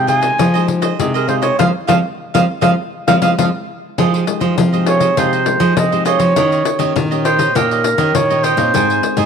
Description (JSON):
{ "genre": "samba and choro", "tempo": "101 BPM", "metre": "4/4", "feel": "straight", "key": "F minor", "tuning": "A4 = 439 Hz", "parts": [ { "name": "mellow clarinet", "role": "melody", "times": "0.0-9.3 s", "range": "Ab4 to Ab5", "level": "-17 LUFS", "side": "right 2 dB", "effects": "none" }, { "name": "cavaquinho", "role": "accompaniment", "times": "0.0-9.3 s", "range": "Eb4 to Ab5", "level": "-21 LUFS", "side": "right 14 dB", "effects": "none" }, { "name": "nylon-string guitar", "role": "accompaniment", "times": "0.0-9.3 s", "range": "Bb2 to G4", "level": "-23 LUFS", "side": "left 10 dB", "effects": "none" }, { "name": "nylon-string guitar", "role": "bass", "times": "0.0-9.3 s", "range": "Ab2 to F3", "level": "-18 LUFS", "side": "right 1 dB", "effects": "none" }, { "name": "pandeiro", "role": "percussion", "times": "0.1-9.3 s", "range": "none", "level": "-20 LUFS", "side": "left 10 dB", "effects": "none" } ], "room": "moderate echo chamber reverb, RT60 1.8 s, small room ambience", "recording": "1960s-style stereo with parts hard left and right", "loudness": "-12 LUFS", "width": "side -6 dB against mid", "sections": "0.0-4.0 A section; 4.0-9.3 B section", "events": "band accent 1.6-4.0; clarinet solo 4.0-9.3", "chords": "0.0 Fm9; 6.4 Eb7; 8.7 Abmaj7" }